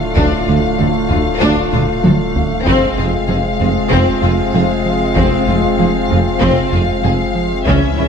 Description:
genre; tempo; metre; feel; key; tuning
cinematic, hybrid orchestral and electronic film score; 96 BPM; 4/4; straight; unclear; A4 = 445 Hz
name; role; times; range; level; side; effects
warm symphonic violin section; melody; 0.0-8.1 s; E5 to F5; -22 LUFS; left 8 dB; none
bright trombone section; sustained chords; 0.0-8.1 s; A2 to A3; -23 LUFS; right 3 dB; none
mellow French horn section; sustained chords; 0.0-8.1 s; C4 to F4; -23 LUFS; left 2 dB; none
warbly tape-like pad; sustained chords; 0.0-8.1 s; Ab3 to C5; -22 LUFS; left 2 dB; chorus, built-in reverb, phaser
rubbery square bass; riff; 0.0-8.1 s; C#2 to F3; -22 LUFS; right 2 dB; none
punchy sub bass; bass; 0.0-8.1 s; D1 to C#2; -26 LUFS; left 1 dB; none
warm symphonic violin section; second line; 0.2-8.0 s; C4 to A4; -21 LUFS; left 5 dB; none
warm symphonic viola section; accompaniment; 0.2-8.1 s; C4 to D4; -23 LUFS; equal; none
mellow tuba; bass; 0.2-8.1 s; F1 to D2; -22 LUFS; right 4 dB; none
warm symphonic cello section; bass; 0.2-8.1 s; D2 to C#3; -22 LUFS; right 2 dB; none
warm symphonic double bass section; bass; 0.2-8.1 s; F1 to D2; -22 LUFS; right 3 dB; none
taiko ensemble; drums; 0.2-8.1 s; none; -20 LUFS; left 1 dB; none
room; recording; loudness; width
moderate scoring stage reverb, RT60 1.6 s; none; -12 LUFS; side -7 dB against mid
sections
0.0-8.1 A section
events
drum fill 1.7-2.7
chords
0.0 Dm; 2.7 Fm

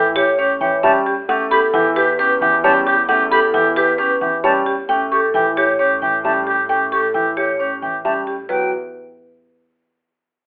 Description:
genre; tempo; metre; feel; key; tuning
classical, minimalist pattern music; 133 BPM; 4/4; straight; E dorian; A4 = 441 Hz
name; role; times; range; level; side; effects
buzzing marimba with hard mallets; melody; 0.0-8.7 s; G4 to G5; -24 LUFS; equal; none
clear oboe; second line; 0.0-8.2 s; G4; -20 LUFS; equal; none
dark grand piano; accompaniment; 0.0-8.7 s; E3 to A3; -26 LUFS; equal; none
vibraphone with hard mallets; arpeggios; 0.0-8.7 s; C#4 to C#5; -23 LUFS; equal; none
rich double bass; bass; 0.0-8.7 s; E2 to A2; -35 LUFS; equal; none
concert flute; arpeggios; 0.8-8.7 s; G5 to C#6; -22 LUFS; equal; none
room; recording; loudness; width
moderate large studio reverb, RT60 0.7 s; telephone sound; -17 LUFS; mono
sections
0.0-8.5 A section; 8.5-10.3 B section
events
none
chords
0.0 A7; 1.3 Em69; 4.9 A7; 8.5 Emadd9

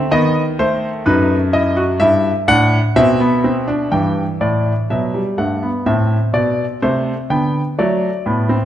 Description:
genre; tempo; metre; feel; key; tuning
classical, baroque-style 4-part fugue for grand piano; 63 BPM; 4/4; straight; E minor; A4 = 440 Hz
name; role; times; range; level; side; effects
clear concert grand piano; solo; 0.0-8.7 s; F#2 to G5; -14 LUFS; equal; none
room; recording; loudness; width
wet recital hall reverb, RT60 1.6 s; none; -14 LUFS; side -11 dB against mid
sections
0.0-3.9 A section; 3.9-8.7 B section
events
none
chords
0.1 B7/D#; 2.0 Em/G; 5.9 Am; 7.8 D

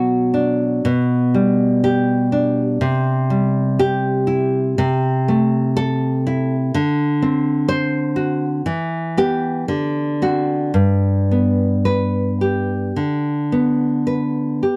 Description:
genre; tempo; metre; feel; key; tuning
romantic piece for solo classical guitar; 52-65 BPM; 4/4; rubato; G major; A4 = 440 Hz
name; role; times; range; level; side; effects
nylon-string guitar; solo; 0.0-14.8 s; G2 to C5; -18 LUFS; equal; none
room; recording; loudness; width
wet booth ambience, RT60 0.2 s; dark, warm production; -19 LUFS; mono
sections
0.0-14.8 A section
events
none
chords
0.0 Bm; 0.8 G/B; 2.8 C; 4.8 Am/C; 6.7 D7; 8.6 Em; 9.7 D7; 10.7 G

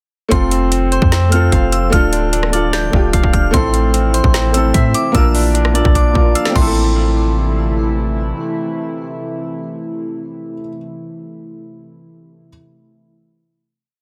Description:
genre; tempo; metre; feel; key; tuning
hip hop, trap; 149 BPM; 4/4; half-time; A phrygian; A4 = 442 Hz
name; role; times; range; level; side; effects
glassy synth bell; second line; 0.3-7.9 s; C6 to G6; -26 LUFS; equal; chorus, digital delay
dark baby grand piano; accompaniment; 0.3-12.5 s; A3 to Bb4; -23 LUFS; equal; none
warbly tape-like pad; sustained chords; 0.9-10.6 s; C3 to F4; -28 LUFS; equal; chorus, built-in reverb
barky tine electric piano; arpeggios; 0.3-10.7 s; C4 to F5; -24 LUFS; equal; digital delay
clean 808-style bass; bass; 0.3-8.3 s; D1 to A2; -18 LUFS; equal; none
trap drum kit; drums; 0.3-6.6 s; crash cymbal, hi-hat, kick drum, rim click, snare drum; -19 LUFS; equal; none
room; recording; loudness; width
little or no reverb; dense, heavily limited modern master; -15 LUFS; mono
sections
0.3-6.8 hook; 6.8-10.0 final hit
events
drum fill 6.0-6.8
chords
0.3 F; 1.9 Dm; 3.5 Am; 5.1 Bb; 6.6 Am

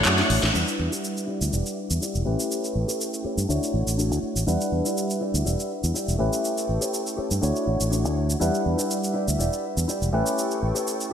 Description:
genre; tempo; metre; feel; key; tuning
filtered disco house; 122 BPM; 4/4; straight; E dorian; A4 = 440 Hz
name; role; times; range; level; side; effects
bell-like tine electric piano; accompaniment; 0.0-11.1 s; G3 to F#5; -27 LUFS; equal; phaser, low-pass filter
bright studio string section; sustained chords; 0.0-11.1 s; G3 to D6; -35 LUFS; equal; vintage 12-bit sampler grit, low-pass filter
tambourine; percussion; 0.0-0.5, 8.4-11.1 s; none; -35 LUFS; left 5 dB; none
fingered electric bass; bass; 0.1-10.7 s; E1 to G2; -25 LUFS; equal; low-pass filter
house drum kit; drums; 0.1-11.1 s; handclaps, hi-hat, shaker, snare drum; -29 LUFS; equal; overdrive, studio reverb
mellow electric guitar; riff; 0.4-10.9 s; D4 to D5; -32 LUFS; left 3 dB; low-pass filter
room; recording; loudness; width
moderate lush hall reverb, RT60 1.9 s, digital ambience; bright 1980s-style digital production; -22 LUFS; side -8 dB against mid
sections
0.5-11.1 A section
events
drum fill 0.1-0.5; band accent 0.4; filter sweep 0.5-11.1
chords
0.0 Dmaj7; 0.5 Em7; 2.3 A7; 3.5 Dmaj7; 4.5 Em7; 6.2 A7; 7.4 Dmaj7; 8.4 Em7; 10.1 A7

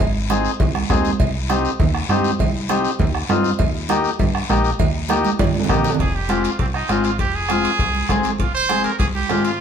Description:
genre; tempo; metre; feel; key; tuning
latin, cumbia; 200 BPM; 4/4; straight; F minor; A4 = 440 Hz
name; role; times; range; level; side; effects
plucky analog bass; bass; 0.0-9.6 s; F1 to G2; -24 LUFS; equal; none
bombo; percussion; 0.0-9.4 s; none; -22 LUFS; equal; none
guiro; percussion; 0.0-9.6 s; none; -32 LUFS; left 7 dB; none
congas; percussion; 0.1-9.4 s; none; -25 LUFS; right 6 dB; none
combo organ; accompaniment; 0.3-9.5 s; Ab3 to Ab4; -22 LUFS; left 4 dB; none
cowbell and timbales; percussion; 0.6-9.6 s; none; -28 LUFS; right 6 dB; none
bright trumpet; second line; 6.0-9.6 s; C4 to C5; -22 LUFS; right 4 dB; none
room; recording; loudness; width
wet stone room reverb, RT60 1.1 s; band playing live in one room; -16 LUFS; side -8 dB against mid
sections
0.0-6.0 A section; 6.0-9.6 B section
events
drum fill 5.2-6.0; trumpet solo 6.0-9.6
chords
0.0 Ab; 1.2 Cm; 3.6 Eb; 6.0 Fm

